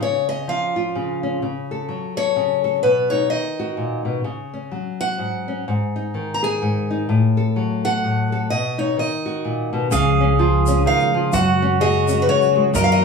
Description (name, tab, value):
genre	acoustic folk duo or small band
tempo	127 BPM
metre	3/4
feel	swing 59% on 8ths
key	Db mixolydian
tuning	A4 = 441 Hz
part	picked steel-string acoustic guitar	melody	0.0-13.0 s	Cb5 to Bb5	-21 LUFS	left 2 dB	none
part	nylon-string guitar	accompaniment	0.0-13.0 s	Gb2 to A4	-22 LUFS	left 2 dB	none
part	pedal steel guitar	second line	9.9-13.0 s	Gb4 to Bb4	-21 LUFS	right 5 dB	none
part	mellow tonewheel organ	sustained chords	9.9-13.0 s	Db3 to Gb4	-24 LUFS	left 1 dB	slow rotary speaker, chorus vibrato
part	upright bass	bass	9.9-13.0 s	Db2 to Gb2	-20 LUFS	equal	none
part	tube shaker	percussion	9.9-12.9 s	none	-31 LUFS	left 4 dB	none
room	wet studio reverb, RT60 0.6 s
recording	band playing live in one room, studio ambience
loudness	-18 LUFS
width	side -5 dB against mid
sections	0.0-9.9 A section; 9.9-13.0 B section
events	none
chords	0.0 Db; 1.4 Gbm/Db; 2.8 Cb; 4.3 Dbsus4; 5.7 Ab5; 7.1 Gbm/A; 8.5 Cb; 9.9 Db; 11.3 Gbsus2